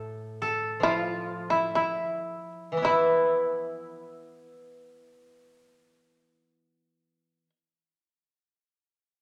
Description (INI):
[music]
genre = japanese traditional, Japanese chamber music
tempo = 49-76 BPM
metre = 2/4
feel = rubato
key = unclear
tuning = A4 = 440 Hz
[part]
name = shamisen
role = melody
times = 0.0-7.5 s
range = E4 to A4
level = -32 LUFS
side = equal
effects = none
[part]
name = koto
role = second line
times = 0.0-7.5 s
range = E4 to B4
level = -31 LUFS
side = equal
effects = none
[part]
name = koto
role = accompaniment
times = 0.0-7.5 s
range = A2 to E4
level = -32 LUFS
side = equal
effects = none
[sound]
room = moderate recital hall reverb, RT60 1.6 s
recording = none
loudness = -27 LUFS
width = mono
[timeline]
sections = 0.0-2.9 A section; 2.9-7.5 B section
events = slowing down 0.0-2.9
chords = none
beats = 0.01 | 0.83 1.75 | 2.85 4.05 | 5.19 6.31